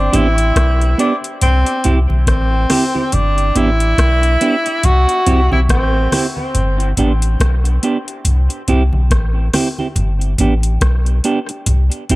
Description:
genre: dub reggae.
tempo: 70 BPM.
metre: 4/4.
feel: swing 58% on 16ths.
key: G major.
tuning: A4 = 438 Hz.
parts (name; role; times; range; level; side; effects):
warm tenor saxophone; melody; 0.0-6.3 s; C4 to F#4; -18 LUFS; equal; dub echo.
warm sub bass; bass; 0.0-12.2 s; G1 to C2; -14 LUFS; equal; none.
semi-hollow electric guitar; accompaniment; 0.1-12.2 s; B3 to G4; -20 LUFS; right 3 dB; dub echo.
soft vintage rhythm box; drums; 0.1-12.2 s; hi-hat, kick drum, rim click; -19 LUFS; equal; overdrive.
congas; percussion; 0.1-12.2 s; none; -23 LUFS; right 1 dB; none.
room: light reverb.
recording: none.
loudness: -12 LUFS.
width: side -19 dB against mid.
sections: 0.0-12.2 A section.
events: kick muted 11.7-12.2.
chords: 0.0 G; 1.4 C; 3.1 G; 4.8 C; 6.5 G; 8.3 C; 10.0 G.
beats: 0.56 1.41 2.27 | 3.12 3.98 4.83 5.69 | 6.54 7.40 8.25 9.11 | 9.96 10.82 11.67.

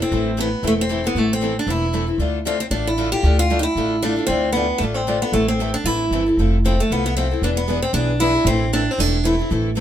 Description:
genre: acoustic string swing (jazz manouche).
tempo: 230 BPM.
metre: 4/4.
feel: swing 56% on 8ths.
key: A minor.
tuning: A4 = 440 Hz.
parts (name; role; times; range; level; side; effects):
picked steel-string acoustic guitar; melody; 0.0-9.5 s; A3 to G4; -20 LUFS; right 1 dB; none.
picked steel-string acoustic guitar; accompaniment; 0.0-9.8 s; D3 to A4; -26 LUFS; left 6 dB; none.
picked steel-string acoustic guitar; accompaniment; 0.1-9.8 s; D3 to B4; -29 LUFS; right 4 dB; none.
upright bass; bass; 0.1-9.8 s; E1 to D2; -22 LUFS; equal; none.
room: light reverb.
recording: minimal, uncompressed stereo recording.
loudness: -17 LUFS.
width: side -10 dB against mid.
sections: 0.0-9.8 A section.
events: none.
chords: 0.0 Am; 2.2 Dm; 5.3 Am; 6.4 Fmaj7; 7.4 E7; 8.5 Am.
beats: | 0.12 0.38 0.64 0.90 | 1.16 1.42 1.68 1.94 | 2.20 2.46 2.72 2.98 | 3.24 3.50 3.77 4.03 | 4.29 4.55 4.81 5.07 | 5.33 5.59 5.85 6.11 | 6.37 6.63 6.89 7.15 | 7.42 7.67 7.94 8.20 | 8.46 8.72 8.98 9.24 | 9.50 9.76.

